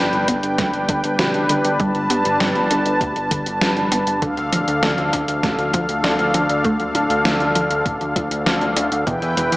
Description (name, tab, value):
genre	synthwave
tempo	99 BPM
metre	4/4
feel	straight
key	D dorian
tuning	A4 = 442 Hz
part	brassy analog pad	sustained chords	0.0-9.6 s	D3 to A5	-19 LUFS	equal	chorus, sidechain pumping
part	analog pluck	arpeggios	0.0-9.6 s	B2 to D4	-26 LUFS	right 1 dB	chorus, vintage 12-bit sampler grit, tape echo
part	fat analog bass	bass	0.0-9.6 s	D1 to G2	-25 LUFS	equal	tube saturation, sidechain pumping
part	clean 12-bit digital drum machine	drums	0.1-9.6 s	hi-hat, snare drum	-22 LUFS	equal	gated reverb
part	electronic kick drum	drums	0.3-9.2 s	none	-28 LUFS	equal	none
room	moderate plate reverb, RT60 2.4 s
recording	small speaker sound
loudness	-16 LUFS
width	side -19 dB against mid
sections	0.0-9.6 A section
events	none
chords	0.0 G; 4.2 Dm